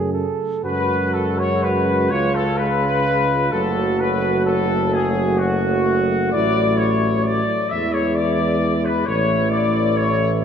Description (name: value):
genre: classical, hymn-like piece for brass band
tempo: 43 BPM (dotted quarters)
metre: 6/8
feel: uneven beats, rubato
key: F# minor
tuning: A4 = 440 Hz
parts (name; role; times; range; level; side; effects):
- warm flugelhorn; second line; 0.0-10.4 s; E4 to A4; -25 LUFS; right 6 dB; none
- dark trombone; accompaniment; 0.0-10.4 s; C#3 to F#3; -26 LUFS; right 3 dB; none
- mellow euphonium; accompaniment; 0.0-10.4 s; G#3 to A3; -25 LUFS; left 2 dB; none
- warm tuba; bass; 0.0-10.4 s; F#1 to F#2; -23 LUFS; equal; none
- clear trumpet section; melody; 0.6-10.3 s; F#4 to E5; -21 LUFS; left 4 dB; none
room: wet church reverb, RT60 2.5 s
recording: none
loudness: -17 LUFS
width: side -8 dB against mid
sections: 0.6-10.4 A section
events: none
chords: 0.0 F#m; 0.6 F#5; 2.1 C#7; 3.5 F#m; 6.3 A5; 7.7 E7; 9.1 A